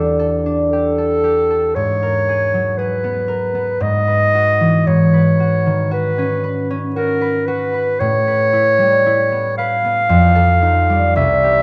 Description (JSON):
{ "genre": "classical, impressionist duo for clarinet and harp", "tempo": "57 BPM", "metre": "3/4", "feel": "rubato", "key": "unclear", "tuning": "A4 = 439 Hz", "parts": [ { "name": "warm clarinet", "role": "melody", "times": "0.0-11.6 s", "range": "A4 to F5", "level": "-18 LUFS", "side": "equal", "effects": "none" }, { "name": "concert harp", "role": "accompaniment", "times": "0.0-11.6 s", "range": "C2 to B4", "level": "-19 LUFS", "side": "equal", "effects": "none" } ], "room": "wet recital hall reverb, RT60 1.4 s", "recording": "dark, warm production", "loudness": "-16 LUFS", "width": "mono", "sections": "0.0-11.6 A section", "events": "none", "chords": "0.0 C69/E (rootless); 1.8 G#m9; 3.8 Eadd9/G#; 4.9 Badd9/G#; 8.0 A9; 10.1 F9" }